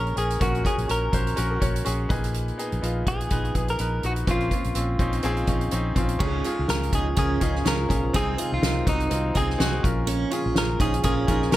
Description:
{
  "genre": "piano-driven pop",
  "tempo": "124 BPM",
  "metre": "4/4",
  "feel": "swing 56% on 16ths",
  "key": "unclear",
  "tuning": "A4 = 438 Hz",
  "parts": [
    { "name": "direct-recorded clean electric guitar", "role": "melody", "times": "0.0-11.6 s", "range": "Eb4 to Bb4", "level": "-28 LUFS", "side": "equal", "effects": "none" },
    { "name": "bright baby grand piano", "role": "accompaniment", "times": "0.0-11.6 s", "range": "Ab2 to C6", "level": "-28 LUFS", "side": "left 1 dB", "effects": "none" },
    { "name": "vintage muted fingered electric bass", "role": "bass", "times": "0.0-11.6 s", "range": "Bb1 to Db2", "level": "-27 LUFS", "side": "equal", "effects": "none" },
    { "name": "soft-mallet drum kit", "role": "drums", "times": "0.1-11.6 s", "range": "crash cymbal, hi-hat, kick drum, snare drum", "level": "-26 LUFS", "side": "equal", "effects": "none" },
    { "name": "sweeping resonant pad", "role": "sustained chords", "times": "6.2-11.6 s", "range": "Ab2 to F4", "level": "-34 LUFS", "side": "right 1 dB", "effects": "none" },
    { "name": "picked steel-string acoustic guitar", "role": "riff", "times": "6.2-11.4 s", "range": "C4 to F4", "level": "-32 LUFS", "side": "right 7 dB", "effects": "none" }
  ],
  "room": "small room ambience",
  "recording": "none",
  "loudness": "-22 LUFS",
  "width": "side -15 dB against mid",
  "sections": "0.0-6.2 A section; 6.2-11.6 B section",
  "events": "grand piano fill 4.8-6.2",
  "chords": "0.4 Gb/Bb; 2.1 B6/Bb; 4.3 Dbmaj7/Bb; 6.2 Db; 8.1 Ab/C; 9.8 Bbm"
}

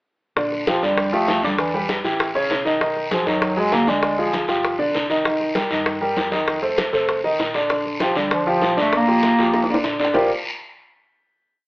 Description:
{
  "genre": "Afro-Cuban jazz",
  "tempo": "196 BPM",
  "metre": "4/4",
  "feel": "straight",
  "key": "Bb major",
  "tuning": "A4 = 441 Hz",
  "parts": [
    { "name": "clear grand piano", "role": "accompaniment", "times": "0.4-10.3 s", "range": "C#3 to Eb5", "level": "-20 LUFS", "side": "equal", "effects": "none" },
    { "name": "hollow-body short-scale fingered electric bass", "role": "bass", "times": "0.4-10.3 s", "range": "G1 to G2", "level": "-40 LUFS", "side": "equal", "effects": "none" },
    { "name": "bongos", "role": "percussion", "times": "0.4-10.2 s", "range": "none", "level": "-25 LUFS", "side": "left 1 dB", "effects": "none" },
    { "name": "congas", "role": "percussion", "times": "0.4-10.2 s", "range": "none", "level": "-32 LUFS", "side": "equal", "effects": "none" },
    { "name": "guiro", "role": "percussion", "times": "0.4-10.2 s", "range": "none", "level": "-27 LUFS", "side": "left 1 dB", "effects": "none" },
    { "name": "warm bass clarinet", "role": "melody", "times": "0.7-4.3, 8.0-9.8 s", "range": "E3 to Bb3", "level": "-20 LUFS", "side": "equal", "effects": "none" }
  ],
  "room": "moderate club reverb, RT60 0.7 s",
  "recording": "heard from further back in the room, AM radio sound",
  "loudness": "-17 LUFS",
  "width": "side -22 dB against mid",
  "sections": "0.4-10.1 A section; 10.1-11.4 final chord",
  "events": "drum fill 9.2-10.1",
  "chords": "0.4 Bb6; 1.6 Em7; 2.2 A9; 2.8 B6; 4.0 Ddim; 4.6 G7; 5.2 Cm7; 6.5 F7; 7.7 Bb6; 10.1 Bb69"
}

